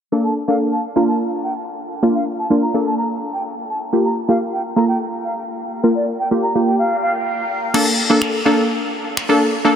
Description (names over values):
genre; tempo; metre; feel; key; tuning
dance-pop; 126 BPM; 4/4; straight; Bb major; A4 = 437 Hz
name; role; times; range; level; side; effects
glassy wavetable pluck; accompaniment; 0.1-9.8 s; Bb3 to Bb4; -17 LUFS; equal; chorus
breathy mellow silver concert flute; melody; 0.2-7.1 s; D5 to Bb5; -23 LUFS; equal; diffuse ambient delay
pop drum kit; drums; 7.7-9.3 s; crash cymbal, finger snaps; -22 LUFS; left 3 dB; none
room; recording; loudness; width
wet huge ambient reverb, RT60 7.3 s; dreamy mix soaked in reverb, low-pass filter; -16 LUFS; side -8 dB against mid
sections
0.1-7.7 A section; 7.7-9.8 B section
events
filter sweep 0.1-7.7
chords
0.1 Bbmaj7; 3.9 Gm7; 7.7 Bbmaj7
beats
| 0.12 0.60 1.08 1.55 | 2.03 2.50 2.98 3.46 | 3.93 4.41 4.88 5.36 | 5.84 6.31 6.79 7.27 | 7.74 8.22 8.70 9.17 | 9.65